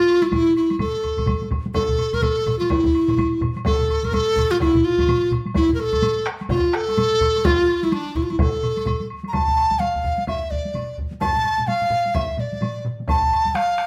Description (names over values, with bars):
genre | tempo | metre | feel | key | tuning
japanese traditional, taiko drum ensemble | 127 BPM | 4/4 | swing 60% on 16ths | A miyako bushi | A4 = 440 Hz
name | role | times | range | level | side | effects
mellow hollow large dizi | melody | 0.0-13.9 s | D4 to Bb5 | -22 LUFS | equal | none
woodblock | percussion | 0.1-13.7 s | none | -36 LUFS | equal | none
taiko ensemble | percussion | 0.2-13.7 s | none | -32 LUFS | equal | none
taiko ensemble | percussion | 0.3-13.9 s | none | -30 LUFS | equal | none
taiko ensemble | percussion | 0.3-13.0 s | none | -30 LUFS | equal | none
taiko ensemble | percussion | 1.7-13.2 s | none | -28 LUFS | equal | none
room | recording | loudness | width
wet studio reverb, RT60 0.8 s | band playing live in one room | -21 LUFS | mono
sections
0.0-9.3 A section; 9.3-13.9 B section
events
none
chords
none